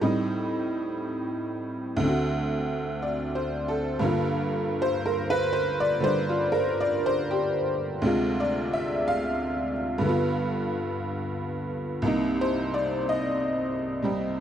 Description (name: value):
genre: solo jazz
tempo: 60 BPM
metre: 4/4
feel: swing 67% on 8ths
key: unclear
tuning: A4 = 439 Hz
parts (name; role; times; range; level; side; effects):
- tack piano; solo; 0.0-14.4 s; C2 to F5; -24 LUFS; equal; none
room: light reverb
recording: dark, warm production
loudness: -24 LUFS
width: side -9 dB against mid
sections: 0.0-14.4 A section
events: honky-tonk piano solo 0.0-14.4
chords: 0.0 Am7b5; 2.0 D7; 4.0 Gm7; 8.0 Dm7b5; 10.0 G7; 12.0 Cm7